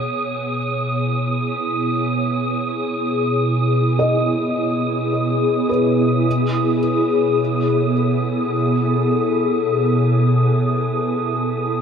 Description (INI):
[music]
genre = ambient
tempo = free time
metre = none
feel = none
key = unclear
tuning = A4 = 440 Hz
[part]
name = glassy FM pad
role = sustained chords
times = 0.0-11.8 s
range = B2 to C#5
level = -18 LUFS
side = equal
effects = ensemble chorus, built-in reverb, phaser
[part]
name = felt-muted upright piano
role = arpeggios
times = 0.0-11.8 s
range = B4 to D#5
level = -27 LUFS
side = left 1 dB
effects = ping-pong delay
[part]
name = wind-like tuned noise texture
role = texture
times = 0.0-11.8 s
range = D#6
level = -25 LUFS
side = right 2 dB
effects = built-in reverb
[sound]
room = wet huge ambient reverb, RT60 9.7 s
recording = none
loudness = -17 LUFS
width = side -7 dB against mid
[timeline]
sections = 0.0-11.8 A section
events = none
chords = 0.0 C#m9/B; 6.3 Emaj7/B